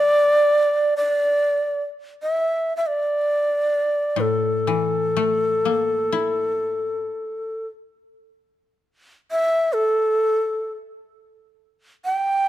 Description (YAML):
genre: japanese traditional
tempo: free time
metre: none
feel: none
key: A in sen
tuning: A4 = 440 Hz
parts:
  - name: bright reedy long shakuhachi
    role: melody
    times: 0.0-12.5 s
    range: A4 to G5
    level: -19 LUFS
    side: equal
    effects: none
  - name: koto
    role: accompaniment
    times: 0.0-1.0, 4.2-8.0 s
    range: A2 to E4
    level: -26 LUFS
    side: left 7 dB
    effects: none
room: light reverb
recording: close, detailed microphones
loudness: -19 LUFS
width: side -13 dB against mid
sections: 0.0-10.9 A section; 10.9-12.5 A section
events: none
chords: none